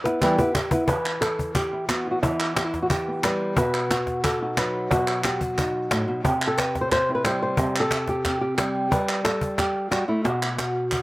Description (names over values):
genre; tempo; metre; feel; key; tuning
flamenco; 179 BPM; 4/4; straight; unclear; A4 = 439 Hz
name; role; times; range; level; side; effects
flamenco guitar; melody; 0.0-11.0 s; A2 to C5; -23 LUFS; equal; none
cajon; percussion; 0.1-11.0 s; none; -26 LUFS; left 1 dB; none
palmas hand claps; percussion; 0.2-11.0 s; none; -28 LUFS; right 2 dB; none
room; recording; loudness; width
little or no reverb; recorded outdoors, with no room sound; -21 LUFS; side -19 dB against mid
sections
0.9-11.0 A section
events
drum fill 0.0-0.9, 10.2-11.0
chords
0.0 Em; 3.6 B; 6.2 C5; 8.9 G; 10.2 B5